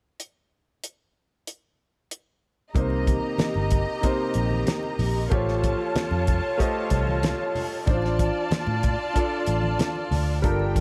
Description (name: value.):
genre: lush 1970s-style soul.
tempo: 94 BPM.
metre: 4/4.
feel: straight.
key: C dorian.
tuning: A4 = 440 Hz.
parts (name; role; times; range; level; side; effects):
damped 70s drum kit; drums; 0.2-10.8 s; hi-hat, kick drum, snare drum; -28 LUFS; equal; none.
warm studio string section; second line; 2.7-10.8 s; D4 to Bb5; -31 LUFS; equal; none.
clear baby grand piano; accompaniment; 2.7-10.8 s; C3 to Eb5; -31 LUFS; equal; none.
congas; percussion; 2.7-10.8 s; none; -37 LUFS; equal; none.
vintage muted fingered electric bass; bass; 2.8-10.8 s; G1 to A2; -28 LUFS; equal; none.
room: light reverb, small room ambience.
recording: none.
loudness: -24 LUFS.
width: mono.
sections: 0.2-2.8 A section; 2.8-10.8 B section.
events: none.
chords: 0.2 N.C.; 2.8 Cm7; 5.3 A7alt; 7.9 Dm7/A.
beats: | 0.20 0.84 1.48 2.12 | 2.76 3.40 4.04 4.68 | 5.32 5.96 6.60 7.24 | 7.88 8.52 9.16 9.80 | 10.44.